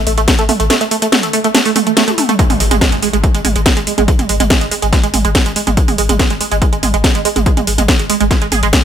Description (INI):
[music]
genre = driving peak-time techno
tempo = 142 BPM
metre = 4/4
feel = straight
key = unclear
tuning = A4 = 440 Hz
[part]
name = saturated sub bass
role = bass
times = 0.0-8.7 s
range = G#1 to A1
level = -19 LUFS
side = left 1 dB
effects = sidechain pumping, low-pass filter
[part]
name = tight sequenced synth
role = riff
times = 0.1-8.8 s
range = G#3 to G#4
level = -16 LUFS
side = right 4 dB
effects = chorus, phaser, tube saturation, sidechain pumping, tape echo
[part]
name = techno drum kit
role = drums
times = 0.1-8.8 s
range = hi-hat, snare drum, toms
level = -15 LUFS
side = equal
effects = none
[part]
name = electronic kick drum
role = drums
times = 0.3-8.8 s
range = none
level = -14 LUFS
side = left 1 dB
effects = none
[part]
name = impact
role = sound effects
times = 2.4-4.1 s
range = none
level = -25 LUFS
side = left 2 dB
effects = none
[sound]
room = little or no reverb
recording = none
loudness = -11 LUFS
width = side -9 dB against mid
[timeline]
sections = 0.0-2.4 A section; 2.4-8.8 B section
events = drum fill 2.1-2.4; drop 2.4-8.8; impact 2.4-4.1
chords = none